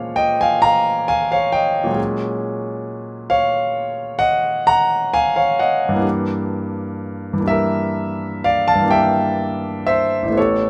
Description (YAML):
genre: classical, impressionist solo piano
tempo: 39-46 BPM (dotted quarters)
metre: 9/8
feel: rubato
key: unclear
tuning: A4 = 440 Hz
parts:
  - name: clear grand piano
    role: solo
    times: 0.0-10.7 s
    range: A1 to Bb5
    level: -19 LUFS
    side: equal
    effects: none
room: light reverb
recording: none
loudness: -19 LUFS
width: mono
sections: 0.0-10.7 A section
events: none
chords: 0.0 Bbm9; 2.0 Ab9sus4/Bb; 6.0 Gm6